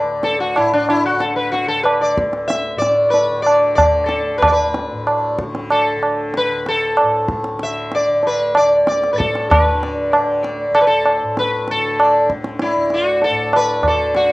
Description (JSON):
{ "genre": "indian classical, Hindustani", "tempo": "95 BPM", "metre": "4/4", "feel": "straight", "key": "D raga bhupali", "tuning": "A4 = 438 Hz", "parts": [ { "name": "sitar", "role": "melody", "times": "0.0-14.3 s", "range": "D4 to E5", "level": "-16 LUFS", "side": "left 1 dB", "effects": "cassette tape" }, { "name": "tanpura", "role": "drone", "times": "0.0-14.3 s", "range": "D2 to D3", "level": "-28 LUFS", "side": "left 1 dB", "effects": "cassette tape" }, { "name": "tabla", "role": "percussion", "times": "0.2-14.3 s", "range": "none", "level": "-17 LUFS", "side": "right 1 dB", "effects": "none" } ], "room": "light reverb, small room ambience", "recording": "home recording on cassette", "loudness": "-14 LUFS", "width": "side -20 dB against mid", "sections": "0.0-14.3 A section", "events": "speeding up 0.0-14.3", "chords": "none" }